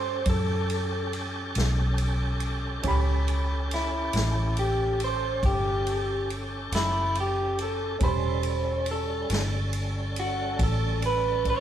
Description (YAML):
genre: slow blues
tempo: 46 BPM (dotted quarters)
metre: 12/8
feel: straight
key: A mixolydian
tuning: A4 = 440 Hz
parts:
  - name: electric guitar through a small old amp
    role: melody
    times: 0.0-11.6 s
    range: E4 to C#5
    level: -28 LUFS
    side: right 1 dB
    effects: none
  - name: warm upright piano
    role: accompaniment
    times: 0.0-11.6 s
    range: G3 to B5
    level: -35 LUFS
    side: right 3 dB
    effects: none
  - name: tonewheel organ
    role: sustained chords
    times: 0.0-11.6 s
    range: G3 to A4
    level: -34 LUFS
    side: right 1 dB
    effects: slow rotary speaker, overdrive, chorus vibrato
  - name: vintage muted fingered electric bass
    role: bass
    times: 0.0-11.6 s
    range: E1 to G2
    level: -28 LUFS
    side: equal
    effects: none
  - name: vintage drum kit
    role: drums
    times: 0.3-11.6 s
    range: kick drum, ride cymbal, snare drum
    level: -33 LUFS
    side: equal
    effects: none
room: light reverb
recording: band playing live in one room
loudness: -24 LUFS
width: side -10 dB against mid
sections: 0.0-11.6 A section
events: clean electric guitar solo 0.0-11.6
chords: 0.0 A7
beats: 0.27 1.56 | 2.85 4.14 5.43 6.72 | 8.01 9.30 10.60